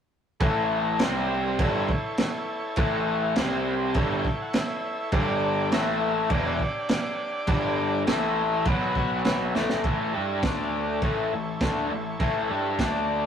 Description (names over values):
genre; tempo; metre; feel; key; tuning
garage rock duo or trio; 102 BPM; 4/4; straight; A mixolydian; A4 = 440 Hz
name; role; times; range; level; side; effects
combo organ; sustained chords; 0.4-13.3 s; C4 to B5; -32 LUFS; right 1 dB; none
raw garage guitar; riff; 0.4-13.3 s; E2 to G4; -26 LUFS; left 2 dB; overdrive
growling picked electric bass; bass; 0.4-13.3 s; E1 to G2; -35 LUFS; equal; overdrive
crunchy breakbeat drum kit; drums; 0.4-12.9 s; crash cymbal, kick drum, snare drum; -28 LUFS; right 1 dB; none
room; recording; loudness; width
light reverb; rough rehearsal-room recording, tube saturation; -23 LUFS; side -8 dB against mid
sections
0.4-9.8 A section; 9.8-13.3 B section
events
transistor combo organ fill 3.4-5.1, 8.1-9.8; drum fill 9.5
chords
0.4 A; 1.0 C5; 1.6 A; 3.4 C5; 4.0 A; 5.1 G5; 5.7 A5; 6.3 G5; 8.1 A5; 8.7 B5; 9.5 Asus4; 9.8 A; 10.4 D5; 11.0 A